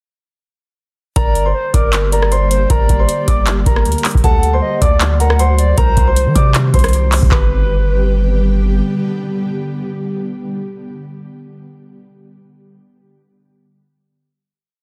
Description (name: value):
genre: hip hop, trap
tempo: 156 BPM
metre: 4/4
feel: half-time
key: G harmonic minor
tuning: A4 = 440 Hz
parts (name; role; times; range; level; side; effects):
- dark concert grand piano; melody; 1.2-8.4 s; A4 to D6; -22 LUFS; equal; digital delay
- hollow clarinet-like synth lead; second line; 1.2-8.4 s; Bb4 to F#5; -25 LUFS; equal; chorus, digital delay
- ethereal airy pad; sustained chords; 1.7-11.0 s; D3 to G4; -26 LUFS; equal; ensemble chorus, built-in reverb, tremolo
- long sustained 808-style bass; bass; 1.2-8.8 s; G1 to Eb3; -17 LUFS; equal; none
- booming analog drum machine; drums; 1.2-7.4 s; handclaps, hi-hat, kick drum, rim click; -17 LUFS; equal; none
room: little or no reverb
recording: dense, heavily limited modern master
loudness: -14 LUFS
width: mono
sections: 1.2-7.3 hook; 7.3-10.4 final chord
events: none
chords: 1.2 Gm; 4.2 D; 5.8 Cm; 7.3 G